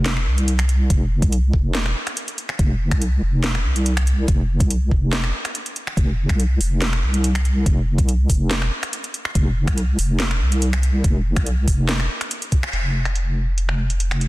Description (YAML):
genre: deep dubstep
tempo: 142 BPM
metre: 4/4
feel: half-time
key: unclear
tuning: A4 = 436 Hz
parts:
  - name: deep soft wobble bass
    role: bass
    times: 0.0-14.3 s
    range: F1 to C2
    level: -19 LUFS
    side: equal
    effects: chorus
  - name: garage drum kit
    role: drums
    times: 0.1-14.3 s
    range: finger snaps, hi-hat, snare drum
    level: -25 LUFS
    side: equal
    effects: low-pass filter on hats, studio ambience, low-pass filter on snare
  - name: electronic kick drum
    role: drums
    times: 0.9-12.6 s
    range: none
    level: -18 LUFS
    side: equal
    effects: studio ambience
room: little or no reverb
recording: dense, heavily limited modern master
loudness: -18 LUFS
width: side -19 dB against mid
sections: 0.0-12.7 A section; 12.7-14.3 B section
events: band accent 12.6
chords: none